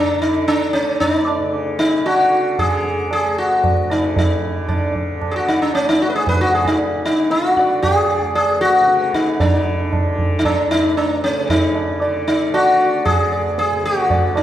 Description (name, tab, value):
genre	indian classical, Hindustani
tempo	114 BPM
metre	5/4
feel	straight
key	D raga marwa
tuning	A4 = 440 Hz
part	sitar	melody	0.0-14.4 s	C#4 to D5	-16 LUFS	equal	none
part	tanpura	drone	0.0-14.4 s	D2 to D3	-26 LUFS	equal	none
part	tabla	percussion	0.5-14.4 s	none	-21 LUFS	right 1 dB	none
room	wet recital hall reverb, RT60 1.5 s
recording	recorded in a church or concert hall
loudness	-15 LUFS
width	side -12 dB against mid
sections	0.0-14.4 A section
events	none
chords	none